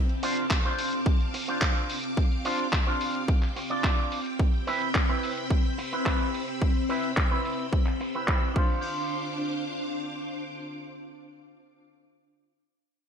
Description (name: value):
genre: nu-disco, nu disco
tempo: 108 BPM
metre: 4/4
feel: straight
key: D dorian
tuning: A4 = 440 Hz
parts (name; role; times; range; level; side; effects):
- string machine, full ensemble; sustained chords; 0.0-11.8 s; C4 to E6; -32 LUFS; left 1 dB; ensemble chorus, sidechain pumping
- dusty soul sampler-style drum kit; drums; 0.1-8.7 s; crash cymbal, handclaps, hi-hat; -32 LUFS; equal; low-pass filter on hats, low-pass filter on perc, low-pass filter on snare, low-pass filter on cymbals, low-pass filter on room, gated reverb
- electric guitar with an envelope filter; riff; 0.2-12.5 s; C4 to D5; -32 LUFS; right 2 dB; lush chorus, low-pass filter, ping-pong delay
- electronic kick drum; drums; 0.5-8.7 s; none; -25 LUFS; equal; overdrive
room: light reverb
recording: bright 1980s-style digital production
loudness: -25 LUFS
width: side -7 dB against mid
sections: 0.0-8.8 A section; 8.8-11.1 B section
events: filter sweep on drum 0.0-8.8; filter sweep on clean electric guitar 0.0-8.8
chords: 0.0 Dm7; 4.4 Cmaj7; 8.6 Dm7